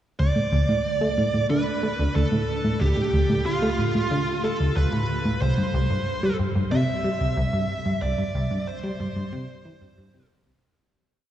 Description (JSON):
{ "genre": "ambient", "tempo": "92 BPM", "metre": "4/4", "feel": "straight", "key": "D dorian", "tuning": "A4 = 440 Hz", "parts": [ { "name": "bluesy overdriven lead guitar", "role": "melody", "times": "0.2-10.3 s", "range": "F4 to E5", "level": "-27 LUFS", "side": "right 2 dB", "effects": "distortion, shimmer reverb, tape echo" }, { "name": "plucky analog bass", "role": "riff", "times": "0.2-10.5 s", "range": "C2 to A3", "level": "-23 LUFS", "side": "equal", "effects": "tape echo" } ], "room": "wet cathedral reverb, RT60 6.2 s", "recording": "in a vast, echoing space, cassette tape", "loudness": "-21 LUFS", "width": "side -11 dB against mid", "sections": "0.2-10.6 A section", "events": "fade-out 7.2-10.6", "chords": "0.2 D5; 5.4 C" }